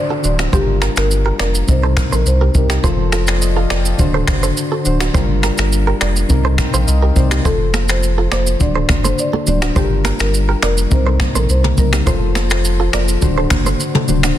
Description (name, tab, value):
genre	afrobeats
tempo	104 BPM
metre	4/4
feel	straight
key	G minor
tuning	A4 = 440 Hz
part	marimba with medium mallets	melody	0.0-2.7, 7.5-11.9 s	G4 to D5	-23 LUFS	left 1 dB	ping-pong delay
part	soft electric-piano-like synth keys	accompaniment	0.0-14.4 s	C3 to A5	-21 LUFS	left 3 dB	chorus
part	downlifter	sound effects	0.0-2.8 s	none	-33 LUFS	equal	none
part	direct-recorded clean electric guitar	riff	0.1-14.3 s	D4 to D5	-24 LUFS	right 6 dB	lush chorus, ping-pong delay
part	warm sub bass	bass	0.2-14.3 s	D1 to C2	-16 LUFS	equal	none
part	jazz brush drum kit	drums	0.2-14.4 s	finger snaps, kick drum, rim click, shaker, toms	-18 LUFS	equal	soft clipping on snare
part	congas	percussion	7.7-14.2 s	none	-26 LUFS	right 6 dB	none
room	small room ambience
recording	dense, heavily limited modern master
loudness	-13 LUFS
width	side -12 dB against mid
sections	0.0-14.4 A section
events	synth keys fill 6.3-7.5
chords	0.0 D7; 0.5 Gm7; 1.7 Cm7; 2.8 F; 4.0 D7; 5.1 Gm7; 6.3 Cm7; 7.5 F; 8.6 D7; 9.8 Gm7; 10.9 Cm7; 12.1 F; 13.2 D7